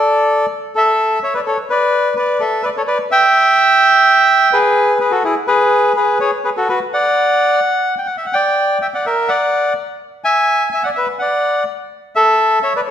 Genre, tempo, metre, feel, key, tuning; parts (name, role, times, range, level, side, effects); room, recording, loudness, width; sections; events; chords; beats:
tango; 126 BPM; 4/4; rubato; D major; A4 = 440 Hz
bandoneon; solo; 0.0-12.9 s; E4 to Ab5; -12 LUFS; equal
wet recital hall reverb, RT60 1.5 s; recorded in a church or concert hall; -12 LUFS; side -10 dB against mid
1.0-12.9 A section
0.0 N.C.; 1.0 D5; 2.9 G; 4.8 E (rootless); 6.7 D; 7.6 N.C.; 8.6 Bb7b13 (rootless); 10.5 E5; 12.4 A
0.02 0.50 | 0.97 1.45 1.93 2.40 | 2.88 3.35 3.82 4.30 | 4.77 5.25 5.72 6.20 | 6.68 7.15 7.63 8.11 | 8.58 9.06 9.54 10.01 | 10.48 10.96 11.43 11.91 | 12.38 12.85